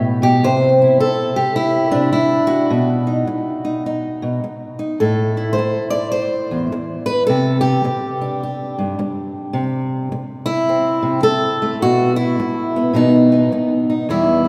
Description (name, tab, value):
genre	folk, solo fingerstyle acoustic guitar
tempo	106 BPM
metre	4/4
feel	swing 62% on 8ths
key	unclear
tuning	A4 = 439 Hz
part	fingerpicked steel-string acoustic guitar	solo	0.0-14.5 s	E2 to D5	-18 LUFS	equal	none
room	wet cathedral reverb, RT60 4.4 s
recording	recorded in a church or concert hall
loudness	-18 LUFS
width	mono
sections	0.0-14.1 A section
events	none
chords	0.4 C; 2.7 B; 5.0 Am; 7.3 Csus2; 9.5 Am/C; 11.8 Bsus4; 13.0 B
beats	| 0.44 1.01 1.58 2.15 | 2.72 3.29 3.85 4.42 | 4.99 5.56 6.13 6.70 | 7.26 7.83 8.40 8.97 | 9.54 10.11 10.68 11.25 | 11.82 12.39 12.96 13.53 | 14.10